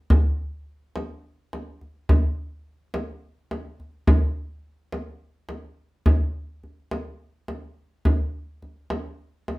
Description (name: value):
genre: contemporary instrumental, contemporary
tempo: 211 BPM (eighths)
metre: 7/8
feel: straight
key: none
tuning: none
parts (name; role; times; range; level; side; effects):
- frame drum; percussion; 0.1-9.6 s; none; -21 LUFS; equal; none
room: wet studio reverb, RT60 0.6 s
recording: heard from further back in the room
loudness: -23 LUFS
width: side -21 dB against mid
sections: 0.0-6.1 A section; 6.1-9.6 B section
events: none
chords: none